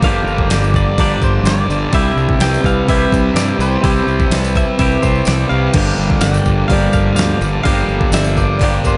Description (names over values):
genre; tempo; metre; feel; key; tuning
rock, shoegaze and dream pop; 126 BPM; 4/4; straight; C mixolydian; A4 = 441 Hz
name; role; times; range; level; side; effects
direct-recorded clean electric guitar; melody; 0.0-9.0 s; C5 to G5; -25 LUFS; equal; subtle chorus, delay
picked plugged-in twelve-string acoustic guitar; arpeggios; 0.0-9.0 s; G4 to D5; -27 LUFS; equal; subtle chorus, delay
thick fuzz guitar; riff; 0.0-9.0 s; G2 to C4; -21 LUFS; equal; distortion, subtle chorus
twangy electric guitar; riff; 0.0-9.0 s; G2 to G4; -22 LUFS; equal; reverse reverb
fuzz fingered electric bass; bass; 0.0-9.0 s; G1 to G2; -20 LUFS; equal; overdrive
detuned 8-bit digital drum machine; drums; 0.0-9.0 s; crash cymbal, hi-hat, kick drum, snare drum; -20 LUFS; equal; none
tambourine; percussion; 0.3-9.0 s; none; -35 LUFS; equal; none
room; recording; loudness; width
moderate plate reverb, RT60 1.1 s, digital ambience; dreamy mix soaked in reverb, nothing above 10.7 kHz; -14 LUFS; mono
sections
0.0-9.0 A section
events
none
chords
0.0 Gm7; 1.9 Cmaj7; 5.7 Gm7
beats
| 0.02 0.50 0.97 1.45 | 1.93 2.41 2.88 3.36 | 3.84 4.31 4.79 5.27 | 5.75 6.22 6.70 7.17 | 7.65 8.13 8.61